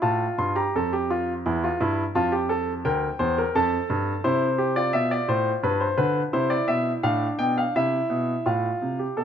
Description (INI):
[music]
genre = classical, baroque-style 3-part fugue for grand piano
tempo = 85 BPM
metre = 3/4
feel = straight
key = F major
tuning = A4 = 441 Hz
[part]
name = warm baby grand piano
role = solo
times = 0.0-9.2 s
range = D2 to C6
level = -22 LUFS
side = equal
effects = none
[sound]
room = moderate recital hall reverb, RT60 1.8 s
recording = close, detailed microphones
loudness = -22 LUFS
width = side -8 dB against mid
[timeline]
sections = 0.0-8.5 A section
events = none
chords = 0.0 F; 1.4 Edim; 2.1 F; 4.2 C; 5.6 G; 6.3 C; 8.5 F/A